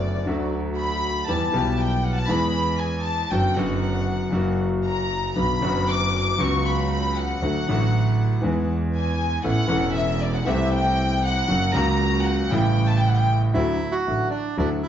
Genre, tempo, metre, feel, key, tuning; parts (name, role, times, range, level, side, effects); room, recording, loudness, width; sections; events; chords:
tango; 118 BPM; 4/4; rubato; B minor; A4 = 440 Hz
warm studio violin section; second line; 0.0-13.3 s; D5 to D6; -26 LUFS; left 2 dB
clear concert grand piano; accompaniment; 0.0-14.8 s; E1 to A4; -24 LUFS; left 1 dB
clear double bass; bass; 0.0-14.8 s; E1 to E2; -25 LUFS; right 2 dB
bandoneon; melody; 13.5-14.9 s; D4 to F#4; -25 LUFS; right 3 dB
wet large studio reverb, RT60 1.0 s; heard from further back in the room, nothing above 7.5 kHz; -20 LUFS; side -10 dB against mid
0.0-13.5 A section; 13.5-14.9 B section
violin section solo 0.0-13.5
0.3 D; 1.3 Em; 2.3 E; 3.3 Bm/F#; 4.3 F#; 5.4 Bm; 6.4 F#sus4/C#; 7.4 D; 8.4 E; 9.4 Aadd9; 10.5 C6; 11.5 F#; 12.5 A7; 13.5 Dadd9